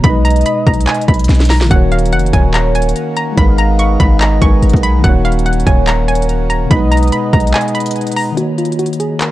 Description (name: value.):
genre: hip hop, trap.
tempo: 144 BPM.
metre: 4/4.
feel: half-time.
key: Eb minor.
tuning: A4 = 440 Hz.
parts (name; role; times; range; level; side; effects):
hollow square pluck; melody; 0.0-9.3 s; F4 to Db6; -19 LUFS; equal; chorus, low-pass filter, digital delay.
warm velvety synth lead; second line; 0.0-7.9 s; Db5 to Ab5; -23 LUFS; right 2 dB; chorus, digital delay.
tine electric piano; accompaniment; 0.0-9.3 s; B2 to Db5; -18 LUFS; left 1 dB; medium stereo tremolo, low-pass filter.
hard-hitting 808-style bass; bass; 0.0-7.5 s; Eb1 to B1; -13 LUFS; equal; none.
trap drum kit; drums; 0.0-9.3 s; handclaps, hi-hat, kick drum, snare drum; -15 LUFS; equal; vintage 12-bit sampler grit.
hand-pumped harmonium; sustained chords; 1.7-8.4 s; Eb3 to Bb5; -22 LUFS; right 1 dB; none.
room: little or no reverb.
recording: dark, warm production.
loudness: -10 LUFS.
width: side -15 dB against mid.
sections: 0.0-8.4 A section.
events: drum fill 1.3-1.7; break 7.5-8.4.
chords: 0.0 B6; 1.7 Ebm7; 3.4 Abmadd9; 5.0 Ebm7; 6.7 B6; 8.4 Ebm7.